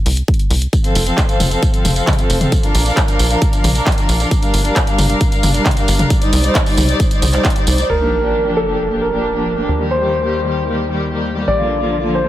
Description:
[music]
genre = uplifting trance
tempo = 134 BPM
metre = 4/4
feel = straight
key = G minor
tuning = A4 = 440 Hz
[part]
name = tight sequencer bass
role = bass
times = 0.1-12.3 s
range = F1 to Eb2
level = -19 LUFS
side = equal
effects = sidechain pumping
[part]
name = punchy analog drum machine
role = drums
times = 0.1-8.0 s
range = crash cymbal, handclaps, hi-hat, tambourine, toms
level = -20 LUFS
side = equal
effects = low-pass filter on hats, low-pass filter on perc, low-pass filter on snare, low-pass filter on toms, low-pass filter on cymbals
[part]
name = electronic kick drum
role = drums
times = 0.3-7.5 s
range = none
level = -16 LUFS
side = equal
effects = none
[part]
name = dark chamber string section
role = sustained chords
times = 0.8-12.3 s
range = D3 to F5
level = -18 LUFS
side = left 1 dB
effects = sidechain pumping, low-pass filter
[part]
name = dark baby grand piano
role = second line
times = 7.9-12.3 s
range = A4 to D5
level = -18 LUFS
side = equal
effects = dub echo
[part]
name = sub drop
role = sound effects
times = 7.9-9.7 s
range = none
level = -25 LUFS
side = equal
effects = none
[sound]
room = light reverb, digital ambience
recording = none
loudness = -13 LUFS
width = side -13 dB against mid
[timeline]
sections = 0.0-7.9 A section; 7.9-12.3 B section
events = impact 7.9-9.7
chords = 0.0 N.C.; 0.7 F; 2.5 Bb; 4.3 Gm7; 6.1 Cmadd9; 7.9 Gm7; 9.7 Eb; 11.5 Bb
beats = 0.28 | 0.73 1.18 1.63 2.07 | 2.52 2.97 3.42 3.87 | 4.31 4.76 5.21 5.66 | 6.10 6.55 7.00 7.45 | 7.89 8.34 8.79 9.24 | 9.69 10.13 10.58 11.03 | 11.48 11.93

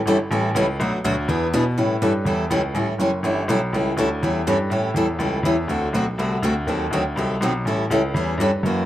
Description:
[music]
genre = acoustic string swing (jazz manouche)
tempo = 245 BPM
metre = 4/4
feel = swing 55% on 8ths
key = A mixolydian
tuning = A4 = 439 Hz
[part]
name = picked steel-string acoustic guitar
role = accompaniment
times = 0.1-8.8 s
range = B2 to A4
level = -21 LUFS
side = equal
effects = none
[part]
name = clear baby grand piano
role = bass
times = 0.1-8.9 s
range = F#1 to B2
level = -23 LUFS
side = equal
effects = none
[sound]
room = moderate spring reverb, RT60 2.2 s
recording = dark, warm production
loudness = -19 LUFS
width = side -13 dB against mid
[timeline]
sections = 0.0-1.8 A section; 1.8-8.9 B section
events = none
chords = 0.0 A7; 0.8 Bm7; 1.3 E7; 1.8 A7; 5.7 D7; 6.7 D#dim7; 7.7 A7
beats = 0.06 0.31 0.55 | 0.80 1.04 1.28 1.53 | 1.77 2.02 2.26 2.51 | 2.75 3.00 3.24 3.49 | 3.73 3.98 4.22 4.47 | 4.71 4.96 5.21 5.45 | 5.70 5.94 6.19 6.43 | 6.68 6.92 7.17 7.42 | 7.66 7.91 8.15 8.40 | 8.64

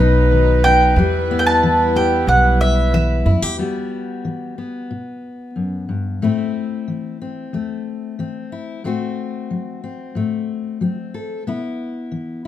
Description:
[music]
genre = acoustic folk duo or small band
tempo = 92 BPM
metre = 4/4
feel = straight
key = E minor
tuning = A4 = 437 Hz
[part]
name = mandolin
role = melody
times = 0.0-3.4 s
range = E5 to B5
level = -17 LUFS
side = right 1 dB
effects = none
[part]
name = warm clarinet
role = second line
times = 0.0-3.2 s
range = B4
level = -21 LUFS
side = right 1 dB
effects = none
[part]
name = fingerpicked steel-string acoustic guitar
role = accompaniment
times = 0.0-12.5 s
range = E2 to A4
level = -22 LUFS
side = left 4 dB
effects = none
[part]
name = rich studio string section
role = sustained chords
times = 0.0-3.6 s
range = F#3 to B4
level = -23 LUFS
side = left 3 dB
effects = none
[part]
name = upright bass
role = bass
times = 0.0-3.6 s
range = B1 to F#2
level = -17 LUFS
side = right 1 dB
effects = none
[sound]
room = moderate large studio reverb, RT60 1.1 s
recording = minimal, uncompressed stereo recording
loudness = -16 LUFS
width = side -12 dB against mid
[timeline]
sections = 0.0-3.6 A section; 3.6-12.5 B section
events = none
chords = 0.0 B; 1.0 Em; 3.6 Emadd9; 6.2 Am; 8.8 F#dim/A; 11.5 Bsus4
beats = 0.31 | 0.97 1.62 2.28 2.93 | 3.59 4.25 4.90 5.56 | 6.22 6.88 7.53 8.19 | 8.84 9.50 10.15 10.81 | 11.46 12.12

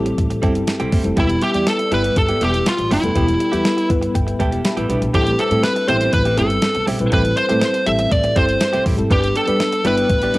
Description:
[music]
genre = 1980s-style pop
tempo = 121 BPM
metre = 4/4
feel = straight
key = unclear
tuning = A4 = 440 Hz
[part]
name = FM electric piano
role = accompaniment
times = 0.0-10.4 s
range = G3 to B5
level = -22 LUFS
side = left 1 dB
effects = chorus, cassette tape
[part]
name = upright bass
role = bass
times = 0.0-10.4 s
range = E1 to A2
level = -22 LUFS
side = equal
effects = none
[part]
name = direct-recorded clean electric guitar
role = riff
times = 0.1-10.4 s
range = G3 to G4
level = -26 LUFS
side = right 3 dB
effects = wide subtle chorus, cassette tape
[part]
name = clean 12-bit digital drum machine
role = drums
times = 0.1-10.4 s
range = hi-hat, kick drum, snare drum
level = -21 LUFS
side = equal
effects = none
[part]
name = fuzz lead guitar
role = melody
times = 1.2-10.4 s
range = E4 to E5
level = -19 LUFS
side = equal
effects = distortion
[sound]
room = light reverb, digital ambience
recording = home recording on cassette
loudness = -15 LUFS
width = side -19 dB against mid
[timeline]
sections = 0.0-10.4 A section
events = FM electric piano fill 3.6-5.1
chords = 0.0 Am7; 1.2 Em; 5.1 Am7; 9.1 G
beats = 0.18 0.68 | 1.17 1.67 2.16 2.66 | 3.15 3.65 4.15 4.64 | 5.14 5.63 6.13 6.62 | 7.12 7.62 8.11 8.61 | 9.11 9.60 10.10

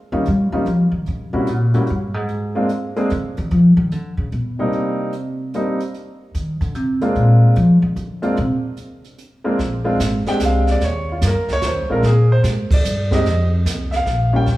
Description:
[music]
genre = jazz piano trio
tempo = 148 BPM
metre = 3/4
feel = swing 66% on 8ths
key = Bb mixolydian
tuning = A4 = 440 Hz
[part]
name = clear concert grand piano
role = melody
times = 0.1-14.6 s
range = G3 to G5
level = -21 LUFS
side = equal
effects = none
[part]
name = upright bass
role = bass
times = 0.1-14.6 s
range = Ab1 to G3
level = -17 LUFS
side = equal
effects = none
[part]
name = jazz brush drum kit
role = drums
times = 0.3-14.6 s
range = brushed snare drum, hi-hat, kick drum, ride cymbal, snare drum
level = -23 LUFS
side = right 1 dB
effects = none
[sound]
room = wet recital hall reverb, RT60 1.6 s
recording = recorded in a church or concert hall, small room ambience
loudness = -16 LUFS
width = side -16 dB against mid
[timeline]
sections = 0.0-9.6 A section; 9.6-14.6 B section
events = upright bass solo 0.0-9.6; band accent 12.6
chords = 0.0 Eb9; 1.1 Edim7 (rootless); 2.3 Bb7 (rootless); 3.5 Dbadd9; 4.3 G; 4.7 Cm7; 5.9 N.C.; 7.2 Bb9; 10.8 Eb7(no3); 12.0 Bb7; 13.2 F5; 14.1 Bb5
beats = 0.25 0.66 | 1.06 1.47 1.88 | 2.28 2.69 3.09 | 3.50 3.91 4.31 | 4.72 5.12 5.53 | 5.93 6.34 6.75 | 7.15 7.56 7.96 | 8.37 8.77 9.18 | 9.59 9.99 10.40 | 10.81 11.21 11.62 | 12.03 12.43 12.84 | 13.25 13.65 14.06 | 14.46

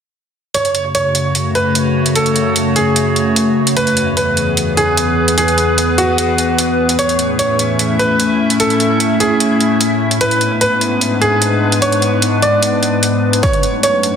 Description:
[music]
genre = heavy wobble dubstep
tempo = 149 BPM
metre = 4/4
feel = half-time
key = F# minor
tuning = A4 = 443 Hz
[part]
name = bright baby grand piano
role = melody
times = 0.5-14.2 s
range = F#4 to D5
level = -16 LUFS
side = right 1 dB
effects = digital delay
[part]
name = evolving wavetable pad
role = sustained chords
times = 0.7-14.2 s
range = E2 to E5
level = -14 LUFS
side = left 1 dB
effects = chorus, built-in reverb, sidechain pumping
[part]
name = electronic hi-hat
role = drums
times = 0.5-14.1 s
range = none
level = -18 LUFS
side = right 1 dB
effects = studio reverb
[part]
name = electronic kick drum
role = drums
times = 13.4-13.5 s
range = none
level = -16 LUFS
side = equal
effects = studio reverb
[sound]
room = wet digital room reverb, RT60 1.1 s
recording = dense, heavily limited modern master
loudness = -12 LUFS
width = side -7 dB against mid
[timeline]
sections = 0.5-14.2 A section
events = none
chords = 0.5 F#m; 3.8 E; 7.0 A; 10.2 G#dim; 13.4 F#m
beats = | 0.55 0.95 1.35 1.75 | 2.15 2.56 2.96 3.36 | 3.77 4.17 4.57 4.97 | 5.38 5.78 6.18 6.58 | 6.99 7.39 7.79 8.20 | 8.60 9.00 9.40 9.81 | 10.21 10.61 11.01 11.42 | 11.82 12.22 12.62 13.03 | 13.43 13.83

